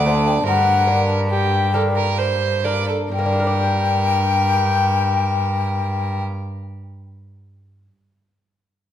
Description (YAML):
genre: classical, baroque-style sonata movement with continuo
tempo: 63-76 BPM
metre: 3/4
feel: straight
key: G minor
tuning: A4 = 440 Hz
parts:
  - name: mellow wooden flute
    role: melody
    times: 0.0-6.2 s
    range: F#5 to G5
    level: -20 LUFS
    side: left 5 dB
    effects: none
  - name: rich violin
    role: second line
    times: 0.0-6.2 s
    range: G4 to D5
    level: -24 LUFS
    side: right 6 dB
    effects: none
  - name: lute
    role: accompaniment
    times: 0.0-6.6 s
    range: D2 to D5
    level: -25 LUFS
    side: left 1 dB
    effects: none
  - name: rich cello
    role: bass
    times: 0.0-6.2 s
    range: D2 to G2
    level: -21 LUFS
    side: right 1 dB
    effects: none
room: wet recital hall reverb, RT60 1.6 s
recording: none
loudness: -16 LUFS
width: side -10 dB against mid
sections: 0.0-3.1 A section; 3.1-8.8 B section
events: slowing down 0.0-3.1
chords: 0.5 Gm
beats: | 0.47 1.30 2.18 | 3.12 4.07 5.02 | 5.97